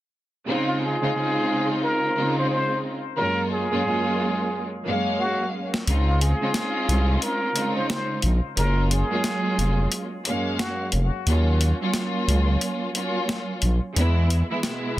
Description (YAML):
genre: hip hop, boom-bap hip-hop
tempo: 89 BPM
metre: 4/4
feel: swing 60% on 16ths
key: Db major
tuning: A4 = 445 Hz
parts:
  - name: warm studio string section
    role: accompaniment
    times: 0.5-15.0 s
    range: Gb2 to F5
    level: -25 LUFS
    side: right 1 dB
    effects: cassette tape, high-pass filter, low-pass filter
  - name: trumpet with plunger mute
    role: melody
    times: 0.7-10.9 s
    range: F4 to C5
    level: -27 LUFS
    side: equal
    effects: high-pass filter, low-pass filter, ping-pong delay
  - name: boom bap sampler-style drum kit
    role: drums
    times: 5.7-14.8 s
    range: hi-hat, snare drum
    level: -27 LUFS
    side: left 1 dB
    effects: none
  - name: growling FM bass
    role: bass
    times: 5.9-15.0 s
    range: F1 to E2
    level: -20 LUFS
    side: equal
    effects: none
room: little or no reverb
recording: dense, heavily limited modern master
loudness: -21 LUFS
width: side -15 dB against mid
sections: 0.5-5.9 A section; 5.9-15.0 B section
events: drum fill 4.5-5.9; kick muted 5.9-15.0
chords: 0.5 Dbmaj7; 3.2 Gbmaj7; 5.9 Dbmaj7; 8.6 Gbmaj7; 11.3 Ebm7; 14.0 E